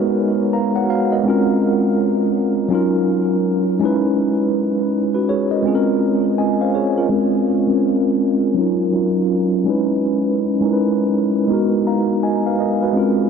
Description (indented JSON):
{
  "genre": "hip hop",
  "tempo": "82 BPM",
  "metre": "4/4",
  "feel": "swing 62% on 16ths",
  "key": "Bb phrygian",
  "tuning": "A4 = 441 Hz",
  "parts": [
    { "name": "mellow tine electric piano", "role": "solo", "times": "0.0-13.3 s", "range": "Gb3 to Bb5", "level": "-15 LUFS", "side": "equal", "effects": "medium stereo tremolo, cassette tape, low-pass filter, diffuse ambient delay" }
  ],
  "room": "wet huge ambient reverb, RT60 7.9 s",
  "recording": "dreamy mix soaked in reverb",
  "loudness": "-15 LUFS",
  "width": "side -6 dB against mid",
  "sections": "0.0-7.1 A section; 7.1-13.3 B section",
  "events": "filter sweep on tine electric piano 7.1-13.3",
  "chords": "0.0 Abm9; 1.2 Bbm9; 2.7 Ebm9; 3.8 Dbm9; 5.6 Bbm9; 8.6 Ebm9; 9.7 Dbm9; 11.5 Abm9",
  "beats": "0.52 | 1.25 1.98 2.71 3.44 | 4.17 4.91 5.64 6.37 | 7.10 7.83 8.56 9.29 | 10.03 10.76 11.49 12.22 | 12.95"
}